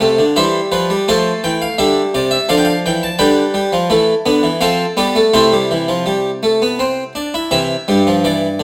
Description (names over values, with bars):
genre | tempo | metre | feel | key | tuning
classical, baroque-style 4-part fugue for harpsichord | 84 BPM | 3/4 | straight | D minor, C major from 3.2 s | A4 = 441 Hz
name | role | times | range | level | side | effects
harpsichord | solo | 0.0-8.6 s | G2 to A5 | -15 LUFS | equal | none
room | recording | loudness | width
wet stone room reverb, RT60 1.0 s | none | -15 LUFS | mono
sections
0.0-7.5 A section; 7.5-8.6 B section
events
none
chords
0.4 C/E; 1.1 Fmaj7; 2.5 Dmadd9; 3.2 Dm; 4.6 G7/F; 5.3 C